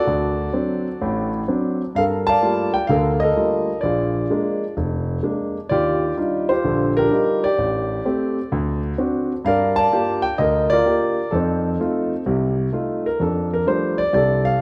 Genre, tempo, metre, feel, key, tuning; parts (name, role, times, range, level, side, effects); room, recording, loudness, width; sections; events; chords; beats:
solo jazz; 128 BPM; 4/4; swing 67% on 8ths; A4 = 438 Hz
warm grand piano; solo; 0.0-14.6 s; F1 to A5; -20 LUFS; equal
moderate concert hall reverb, RT60 1.9 s; recorded in a church or concert hall; -20 LUFS; mono
0.0-13.2 A section; 13.2-14.6 B section
0.1 D7; 1.9 Gm9; 3.8 Bb7; 5.7 Ebmaj9; 7.6 A7sus4; 8.5 D7; 9.4 Gm7; 11.3 F7; 13.2 F69
| 0.06 0.53 1.00 1.47 | 1.94 2.41 2.88 3.35 | 3.82 4.29 4.76 5.23 | 5.70 6.17 6.64 7.11 | 7.58 8.04 8.51 8.98 | 9.45 9.92 10.39 10.85 | 11.32 11.79 12.26 12.73 | 13.19 13.66 14.13 14.60